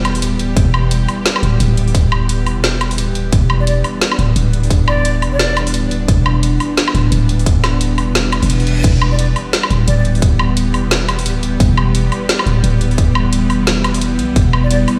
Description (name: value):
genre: half-time drum and bass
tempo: 174 BPM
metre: 4/4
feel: swing 59% on 16ths, half-time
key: E minor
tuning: A4 = 441 Hz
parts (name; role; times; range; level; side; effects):
- bowed-like drone; sustained chords; 0.0-15.0 s; E3 to B4; -22 LUFS; equal; built-in reverb, sidechain pumping
- growling 808-style bass; bass; 0.0-14.9 s; D1 to B1; -17 LUFS; equal; none
- drum and bass drum kit; drums; 0.0-15.0 s; crash cymbal, hi-hat, snare drum, woodblock; -21 LUFS; equal; none
- electronic kick drum; drums; 0.6-14.4 s; none; -15 LUFS; equal; none
- jazz flute; melody; 3.6-5.6, 9.1-10.0, 14.6-14.8 s; D5; -26 LUFS; equal; tape echo
- reverse cymbal; sound effects; 8.4-8.8 s; none; -31 LUFS; equal; none
room: light reverb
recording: played on a big sound system in a bare room, stone room reverb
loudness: -15 LUFS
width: mono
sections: 0.0-15.0 A section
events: reverse cymbal 8.4-8.8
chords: 0.0 Em